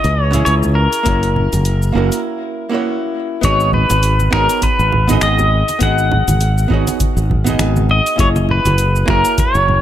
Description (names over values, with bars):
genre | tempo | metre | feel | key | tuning
sunset chillout | 101 BPM | 4/4 | swing 57% on 16ths | G# minor | A4 = 445 Hz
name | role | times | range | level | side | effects
pedal steel guitar | melody | 0.0-9.8 s | A#4 to F#5 | -17 LUFS | equal | ping-pong delay
archtop guitar, miked and amplified | accompaniment | 0.0-9.8 s | A#2 to D#5 | -20 LUFS | moving between left 5 dB and right 8 dB | auto-pan, ping-pong delay
modern bright fingered electric bass | bass | 0.0-9.8 s | F#1 to C#2 | -15 LUFS | equal | none
smooth R&B drum kit | drums | 0.0-9.7 s | cabasa, finger snaps, hi-hat | -24 LUFS | left 2 dB | none
congas | percussion | 0.3-9.8 s | none | -23 LUFS | right 2 dB | none
electronic kick drum | drums | 1.1-9.5 s | none | -20 LUFS | equal | none
room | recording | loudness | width
little or no reverb | none | -12 LUFS | side -11 dB against mid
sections
0.0-3.4 A section; 3.4-9.8 B section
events
break 2.3-3.4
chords
0.0 C#m7; 1.1 F#7; 3.4 G#m7; 8.2 F#13